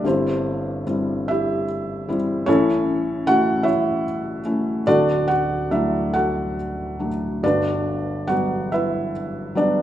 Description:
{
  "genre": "classical, lyrical solo piano",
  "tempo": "46-51 BPM (dotted quarters)",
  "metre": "6/8",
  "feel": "rubato",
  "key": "G major",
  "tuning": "A4 = 445 Hz",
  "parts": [
    { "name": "felt-muted upright piano", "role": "solo", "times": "0.0-9.8 s", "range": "D1 to F#5", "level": "-19 LUFS", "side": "equal", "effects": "none" }
  ],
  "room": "wet recital hall reverb, RT60 1.7 s",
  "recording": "recorded in a church or concert hall, nothing above 11.0 kHz",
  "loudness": "-19 LUFS",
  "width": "side -12 dB against mid",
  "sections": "0.0-9.8 A section",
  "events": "none",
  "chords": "0.0 C/G; 2.5 A; 4.9 D; 7.4 Gmaj7"
}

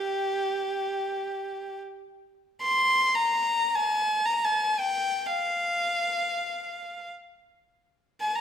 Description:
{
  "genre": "persian",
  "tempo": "free time",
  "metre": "none",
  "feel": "none",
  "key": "G dastgah shur",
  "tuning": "A4 = 440 Hz",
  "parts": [
    { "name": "rich violin", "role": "solo", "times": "0.0-8.4 s", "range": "G4 to C6", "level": "-25 LUFS", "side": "equal", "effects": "none" }
  ],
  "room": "wet recital hall reverb, RT60 1.6 s",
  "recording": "minimal, uncompressed stereo recording",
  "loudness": "-24 LUFS",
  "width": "side -8 dB against mid",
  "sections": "0.0-2.1 A section; 2.1-8.4 A section",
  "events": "none",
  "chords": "none"
}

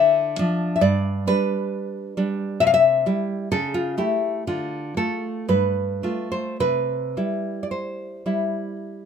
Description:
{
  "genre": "romantic piece for solo classical guitar",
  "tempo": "52-68 BPM",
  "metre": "3/4",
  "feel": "rubato",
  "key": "C major",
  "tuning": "A4 = 441 Hz",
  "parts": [
    { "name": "nylon-string guitar", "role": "solo", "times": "0.0-9.1 s", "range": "G2 to F5", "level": "-20 LUFS", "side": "left 1 dB", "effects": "none" }
  ],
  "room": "light reverb",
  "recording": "minimal, uncompressed stereo recording",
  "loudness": "-21 LUFS",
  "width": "side -7 dB against mid",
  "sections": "0.0-9.1 A section",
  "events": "none",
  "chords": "0.0 Dm; 0.8 G; 2.6 C; 3.5 A7/C#; 4.5 Dm; 5.5 G9; 6.6 C"
}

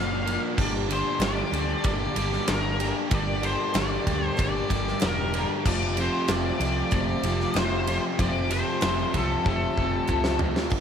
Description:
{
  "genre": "classic rock",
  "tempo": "95 BPM",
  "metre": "4/4",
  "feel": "straight",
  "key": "unclear",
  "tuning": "A4 = 444 Hz",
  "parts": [
    { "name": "octave-fuzz lead guitar", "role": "melody", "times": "0.0-10.4 s", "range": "A4 to F5", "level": "-30 LUFS", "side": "left 3 dB", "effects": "wah, distortion, slapback echo" },
    { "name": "fingerpicked twelve-string acoustic guitar", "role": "accompaniment", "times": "0.0-10.7 s", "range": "G2 to G4", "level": "-35 LUFS", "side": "left 8 dB", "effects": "slapback echo" },
    { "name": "mellow tonewheel organ", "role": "sustained chords", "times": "0.0-10.8 s", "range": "A3 to F5", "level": "-38 LUFS", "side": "right 2 dB", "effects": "none" },
    { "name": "overdriven electric guitar", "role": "riff", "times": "0.0-10.7 s", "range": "F2 to Bb3", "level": "-29 LUFS", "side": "right 1 dB", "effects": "slapback echo" },
    { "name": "hollow-body short-scale fingered electric bass", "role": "bass", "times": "0.0-10.5 s", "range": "E1 to D2", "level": "-30 LUFS", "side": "equal", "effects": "none" },
    { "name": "big rock drum kit", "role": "drums", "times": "0.3-10.8 s", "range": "crash cymbal, kick drum, ride cymbal, snare drum, toms", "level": "-28 LUFS", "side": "equal", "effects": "none" },
    { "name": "group handclap", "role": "percussion", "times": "1.2-10.2 s", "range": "none", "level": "barely audible", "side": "none", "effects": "none" }
  ],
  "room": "moderate lush hall reverb, RT60 3.1 s",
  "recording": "big arena sound",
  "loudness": "-23 LUFS",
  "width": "side -8 dB against mid",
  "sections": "0.0-10.7 A section",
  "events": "drum fill 9.4-10.7",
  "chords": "0.0 Bb; 0.6 Gm; 5.7 Fadd9"
}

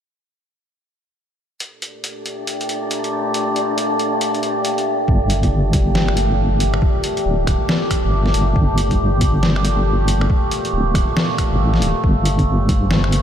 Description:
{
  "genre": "deep dubstep",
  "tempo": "138 BPM",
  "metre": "4/4",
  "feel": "swing 61% on 16ths, half-time",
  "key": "G minor",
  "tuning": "A4 = 440 Hz",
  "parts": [
    { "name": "overtone-sweeping drone", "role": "sustained chords", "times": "2.1-13.2 s", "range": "Bb2 to C5", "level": "-21 LUFS", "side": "equal", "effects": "chorus, built-in reverb" },
    { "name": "trip hop sampler-style drum kit", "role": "drums", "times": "1.6-13.2 s", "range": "finger snaps, hi-hat, snare drum", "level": "-24 LUFS", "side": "equal", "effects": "overdrive, studio reverb" },
    { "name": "wind-like tuned noise texture", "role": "texture", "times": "2.1-5.1 s", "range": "D4 to D5", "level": "-28 LUFS", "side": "left 2 dB", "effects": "built-in reverb" },
    { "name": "deep soft wobble bass", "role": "bass", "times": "5.1-13.2 s", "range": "D1 to A1", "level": "-17 LUFS", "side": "equal", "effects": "chorus" },
    { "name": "electronic kick drum", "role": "drums", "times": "5.1-12.8 s", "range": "none", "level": "-19 LUFS", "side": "equal", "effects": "overdrive, studio reverb" }
  ],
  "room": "moderate cathedral reverb, RT60 5.6 s",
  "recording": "dreamy mix soaked in reverb",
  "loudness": "-15 LUFS",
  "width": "side -9 dB against mid",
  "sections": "1.6-5.1 A section; 5.1-13.2 B section",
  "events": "none",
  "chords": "1.6 Gmadd9"
}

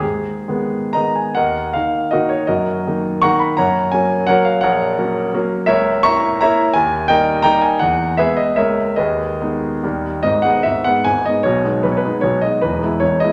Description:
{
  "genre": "classical, romantic triple-time dance for piano with dotted rhythms",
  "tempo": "125-184 BPM",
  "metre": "3/4",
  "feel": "rubato",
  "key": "Eb minor, G# minor from 5.7 s",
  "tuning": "A4 = 440 Hz",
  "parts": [
    { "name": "warm grand piano", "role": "solo", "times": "0.0-13.3 s", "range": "E1 to Db6", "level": "-17 LUFS", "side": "equal", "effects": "none" }
  ],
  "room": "wet recital hall reverb, RT60 1.6 s",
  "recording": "none",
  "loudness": "-17 LUFS",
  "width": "mono",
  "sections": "0.0-1.4 A section; 1.4-10.2 B section; 10.2-13.3 A section",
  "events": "none",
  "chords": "0.0 G#m; 1.4 Ebm; 2.5 Ebm/Gb; 3.6 Gb; 4.6 Gb/Bb; 5.7 A#dim/C#; 6.8 D#; 7.8 E; 8.6 A#m7b5/C#; 9.0 G#m/D#; 9.8 D#; 10.2 G#m; 11.4 G#m/B; 12.6 E"
}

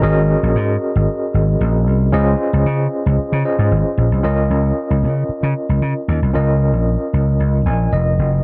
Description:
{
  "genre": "early-eighties boogie funk",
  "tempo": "114 BPM",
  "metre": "4/4",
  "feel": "straight",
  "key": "Db major",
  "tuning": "A4 = 436 Hz",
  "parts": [
    { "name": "overdriven tine electric piano", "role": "accompaniment", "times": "0.0-8.4 s", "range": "Db4 to Ab5", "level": "-22 LUFS", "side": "equal", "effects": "fast tremolo" },
    { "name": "vintage slap bass", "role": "bass", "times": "0.0-8.4 s", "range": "F1 to Db3", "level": "-17 LUFS", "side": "equal", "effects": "none" }
  ],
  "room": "little or no reverb",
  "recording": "dry, close 1970s-style studio recording",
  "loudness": "-17 LUFS",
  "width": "mono",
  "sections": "0.0-4.2 A section; 4.2-8.4 B section",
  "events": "tine electric piano fill 7.4-8.4",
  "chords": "0.0 Ab9sus4; 2.1 Dbmaj9; 4.2 Db69"
}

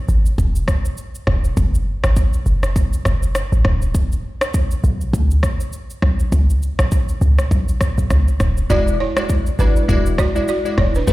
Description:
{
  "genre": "afrobeats",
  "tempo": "101 BPM",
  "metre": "4/4",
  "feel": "swing 58% on 16ths",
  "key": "E mixolydian",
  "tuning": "A4 = 440 Hz",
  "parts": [
    { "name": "short 808-style bass", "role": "bass", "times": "0.1-11.1 s", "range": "D1 to D2", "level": "-17 LUFS", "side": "equal", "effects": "none" },
    { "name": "deep house drum kit", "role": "drums", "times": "0.1-11.1 s", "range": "kick drum, rim click, shaker", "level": "-18 LUFS", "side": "equal", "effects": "none" },
    { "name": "glassy digital keys", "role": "accompaniment", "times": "8.7-11.1 s", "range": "G#3 to D5", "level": "-20 LUFS", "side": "left 2 dB", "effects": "chorus" },
    { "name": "balafon", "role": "riff", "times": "8.7-11.1 s", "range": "D4 to D5", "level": "-23 LUFS", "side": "right 4 dB", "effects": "digital delay" }
  ],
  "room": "little or no reverb",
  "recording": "played on a big sound system in a bare room, large studio reverb",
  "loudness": "-15 LUFS",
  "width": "side -18 dB against mid",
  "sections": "0.0-11.1 A section",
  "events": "none",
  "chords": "0.0 E; 1.6 N.C.; 3.6 Bm/D; 6.3 Bsus2; 8.7 E9"
}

